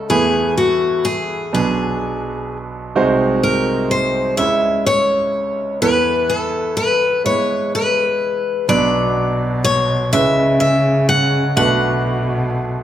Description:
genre	acoustic folk-pop ballad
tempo	42 BPM (dotted quarters)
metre	6/8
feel	straight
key	B dorian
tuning	A4 = 440 Hz
part	picked steel-string acoustic guitar	melody	0.0-12.8 s	F#4 to F#5	-17 LUFS	left 2 dB	none
part	clear concert grand piano	accompaniment	0.0-12.8 s	B1 to C#5	-20 LUFS	right 3 dB	none
part	dark cello	bass	8.7-12.8 s	B2 to C#3	-19 LUFS	equal	none
room	wet recital hall reverb, RT60 1.7 s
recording	recorded in a church or concert hall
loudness	-14 LUFS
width	side -11 dB against mid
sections	0.0-12.8 A section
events	none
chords	0.1 Esus4; 1.5 Bm; 2.9 G#7/B#; 4.4 C#m; 5.8 E; 8.7 Bm; 10.1 C#m7; 11.6 Bm7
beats	| 0.09 1.52 | 2.95 4.38 | 5.81 7.25 | 8.69 10.13 | 11.57

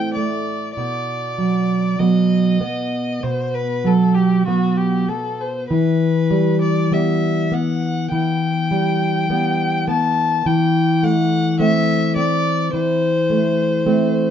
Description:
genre	romantic duo for violin and classical guitar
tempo	48-54 BPM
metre	4/4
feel	rubato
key	E minor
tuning	A4 = 437 Hz
part	warm violin	melody	0.0-14.3 s	F#4 to A5	-22 LUFS	left 2 dB	none
part	nylon-string guitar	accompaniment	0.0-14.3 s	A2 to C4	-17 LUFS	right 1 dB	none
room	moderate stone room reverb, RT60 1.0 s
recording	band playing live in one room, nothing above 7.5 kHz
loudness	-16 LUFS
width	side -9 dB against mid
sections	0.0-14.3 A section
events	none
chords	0.0 Am; 0.8 B; 5.7 Em; 10.5 Am/E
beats	| 0.77 1.99 3.23 4.47 | 5.70 6.92 8.13 9.30 | 10.46 11.61 12.74 13.86

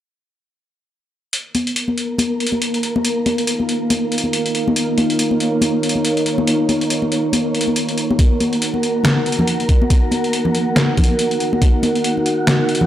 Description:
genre	deep dubstep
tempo	140 BPM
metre	4/4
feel	swing 58% on 16ths, half-time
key	Eb minor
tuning	A4 = 440 Hz
part	dark analog pad	sustained chords	2.8-12.9 s	Eb4 to Gb5	-21 LUFS	right 1 dB	chorus
part	trip hop sampler-style drum kit	drums	1.3-12.8 s	hi-hat, snare drum	-21 LUFS	equal	none
part	wind-like tuned noise texture	texture	1.9-12.9 s	Bb3 to Db5	-24 LUFS	right 3 dB	built-in reverb
part	congas	percussion	1.5-12.9 s	none	-20 LUFS	left 2 dB	dub echo
part	electronic kick drum	drums	8.2-11.7 s	none	-13 LUFS	equal	none
room	moderate lush hall reverb, RT60 1.7 s, digital ambience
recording	dry, gritty hardware recording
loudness	-15 LUFS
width	side -12 dB against mid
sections	1.3-12.9 A section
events	none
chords	1.3 Ebmadd9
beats	| 1.33 1.76 2.19 2.62 | 3.05 3.48 3.90 4.33 | 4.76 5.19 5.62 6.05 | 6.47 6.90 7.33 7.76 | 8.19 8.62 9.05 9.47 | 9.90 10.33 10.76 11.19 | 11.62 12.05 12.47

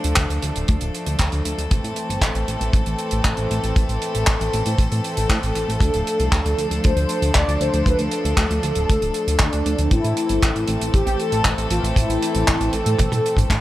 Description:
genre	italo disco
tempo	117 BPM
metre	4/4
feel	straight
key	A minor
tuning	A4 = 440 Hz
part	rich chamber string section	sustained chords	0.0-13.6 s	E3 to A4	-25 LUFS	left 1 dB	none
part	chorused synth bass	bass	0.0-13.6 s	D1 to A2	-23 LUFS	equal	none
part	damped 70s drum kit	drums	0.0-13.6 s	handclaps, hi-hat, toms	-25 LUFS	right 1 dB	none
part	kick drum	drums	0.2-13.6 s	none	-19 LUFS	equal	none
part	mellow synth brass	melody	5.8-13.6 s	D4 to D5	-24 LUFS	left 1 dB	chorus, cassette tape, digital delay
room	light reverb, small room ambience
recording	none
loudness	-18 LUFS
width	side -15 dB against mid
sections	0.0-13.6 A section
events	drum fill 13.0-13.6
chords	0.0 Dm; 1.7 Am; 5.8 Dm; 9.9 Am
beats	0.17 0.68 1.20 | 1.71 2.22 2.73 3.25 | 3.76 4.27 4.79 5.30 | 5.81 6.33 6.84 7.35 | 7.86 8.38 8.89 9.40 | 9.91 10.43 10.94 11.45 | 11.97 12.48 12.99 13.50

